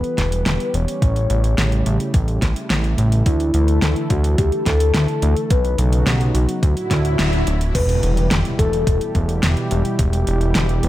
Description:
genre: synthwave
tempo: 107 BPM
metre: 4/4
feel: straight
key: E dorian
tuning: A4 = 440 Hz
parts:
  - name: soft octave-layered synth lead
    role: melody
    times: 0.0-10.9 s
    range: E4 to C#5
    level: -24 LUFS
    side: left 2 dB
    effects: chorus, phaser, tape echo
  - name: warm analog pad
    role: sustained chords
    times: 0.0-10.9 s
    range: A2 to B4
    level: -25 LUFS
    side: right 1 dB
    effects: chorus, sidechain pumping
  - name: fat analog bass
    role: bass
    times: 0.0-10.9 s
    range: D1 to D2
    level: -18 LUFS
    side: equal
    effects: none
  - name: pop drum kit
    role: drums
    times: 0.0-10.9 s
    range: crash cymbal, hi-hat, snare drum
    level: -23 LUFS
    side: equal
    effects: small room ambience
  - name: electronic kick drum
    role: drums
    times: 0.2-10.1 s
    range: none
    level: -19 LUFS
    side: equal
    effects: overdrive, small room ambience
  - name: swell and impact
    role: sound effects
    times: 6.8-10.0 s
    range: none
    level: -28 LUFS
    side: equal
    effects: none
room: little or no reverb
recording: none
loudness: -16 LUFS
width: side -15 dB against mid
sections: 0.0-7.7 A section; 7.7-10.9 B section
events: swell 6.8-7.7; band accent 7.2; impact 7.7-10.0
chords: 0.0 Em; 1.0 A7; 3.3 Dsus2; 5.5 Badd9; 6.6 D; 7.7 Em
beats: 0.46 | 1.02 1.58 2.14 2.70 | 3.26 3.82 4.38 4.95 | 5.51 6.07 6.63 7.19 | 7.75 8.31 8.87 9.43 | 9.99 10.55

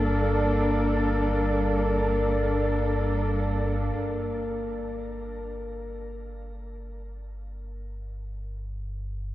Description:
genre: dark ambient drone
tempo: free time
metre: none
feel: none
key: G minor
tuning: A4 = 438 Hz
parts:
  - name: muted studio cello section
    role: sustained chords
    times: 0.0-4.0 s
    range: G3 to A4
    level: -27 LUFS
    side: equal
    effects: shimmer reverb
  - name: deep rumbling drone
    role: drone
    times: 0.0-9.3 s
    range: G1 to G2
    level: -30 LUFS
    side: equal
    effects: built-in reverb
  - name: metallic inharmonic drone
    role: texture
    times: 0.0-4.0 s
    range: Bb3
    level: -32 LUFS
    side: left 1 dB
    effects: chorus, built-in reverb, shimmer reverb
room: wet huge ambient reverb, RT60 7.7 s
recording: worn, warbling old tape, cassette tape, warbly pitch drift, nothing above 10.6 kHz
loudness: -24 LUFS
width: side -15 dB against mid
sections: 0.0-3.9 A section; 3.9-9.3 B section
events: none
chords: 0.0 Gm; 3.9 N.C.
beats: free time

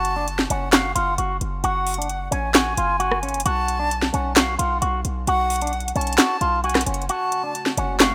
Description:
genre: hip hop, trap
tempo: 132 BPM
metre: 4/4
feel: half-time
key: F# harmonic minor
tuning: A4 = 440 Hz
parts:
  - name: electric guitar with an envelope filter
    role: melody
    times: 0.0-8.1 s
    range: C#4 to F#4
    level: -26 LUFS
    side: equal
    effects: subtle chorus, digital delay
  - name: bright silver concert flute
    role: second line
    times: 0.0-8.1 s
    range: E#5 to A5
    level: -31 LUFS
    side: equal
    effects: digital delay
  - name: hard-hitting 808-style bass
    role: bass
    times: 0.0-8.1 s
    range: F#1 to B1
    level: -29 LUFS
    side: equal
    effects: none
  - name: trap drum kit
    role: drums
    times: 0.0-8.1 s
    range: handclaps, hi-hat, rim click, snare drum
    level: -22 LUFS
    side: equal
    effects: none
  - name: dark analog pad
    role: sustained chords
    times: 7.3-8.1 s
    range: C#3 to F#4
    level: -39 LUFS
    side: equal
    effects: chorus
room: light reverb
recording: rough home demo mix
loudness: -21 LUFS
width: mono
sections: 0.0-8.1 A section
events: break 7.1-7.5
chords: 0.0 F#m; 3.5 B5; 7.1 F#m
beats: 0.27 0.73 1.18 | 1.64 2.09 2.55 3.00 | 3.46 3.91 4.37 4.82 | 5.27 5.73 6.18 6.64 | 7.09 7.55 8.00

